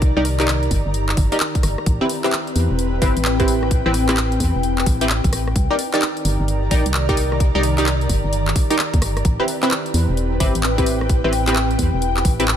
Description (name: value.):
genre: UK garage, two-step garage.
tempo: 130 BPM.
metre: 4/4.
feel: swing 64% on 16ths.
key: unclear.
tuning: A4 = 440 Hz.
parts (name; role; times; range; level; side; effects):
airy breathy pad; sustained chords; 0.0-12.6 s; C4 to D5; -29 LUFS; equal; chorus, sidechain pumping.
punchy chord stab; stabs; 0.0-12.4 s; C4 to D5; -22 LUFS; equal; chorus, digital delay.
organ-like FM bass; bass; 0.0-12.6 s; E1 to E2; -20 LUFS; equal; tube saturation.
electronic kick drum; drums; 0.0-12.4 s; none; -19 LUFS; equal; studio reverb.
house drum kit; drums; 0.0-12.6 s; handclaps, hi-hat, rim click; -24 LUFS; left 1 dB; studio reverb.
ethereal airy pad; texture; 0.0-12.6 s; Eb3 to Bb5; -25 LUFS; left 1 dB; ensemble chorus, built-in reverb, sidechain pumping.
room: light reverb.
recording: faint mains hum.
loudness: -16 LUFS.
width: side -9 dB against mid.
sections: 0.0-12.6 A section.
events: none.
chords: 0.0 Cm9; 1.9 Am9; 5.6 Cm9; 9.2 Am9.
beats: | 0.02 0.48 0.94 1.40 | 1.86 2.33 2.79 3.25 | 3.71 4.17 4.63 5.09 | 5.56 6.02 6.48 6.94 | 7.40 7.86 8.33 8.79 | 9.25 9.71 10.17 10.63 | 11.10 11.56 12.02 12.48.